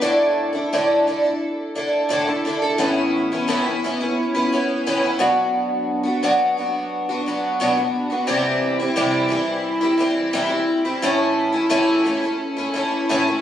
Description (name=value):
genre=rock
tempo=87 BPM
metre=4/4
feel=straight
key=unclear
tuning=A4 = 441 Hz
part: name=picked twelve-string acoustic guitar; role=solo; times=0.0-13.4 s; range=A2 to A4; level=-18 LUFS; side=equal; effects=lush chorus, slapback echo
room=light reverb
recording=recorded on a phone in the room, club reverb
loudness=-18 LUFS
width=side -10 dB against mid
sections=0.0-2.8 A section; 2.8-13.4 B section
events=none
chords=0.0 Asus4; 2.8 Aadd9; 5.2 Bm; 8.3 C; 11.0 A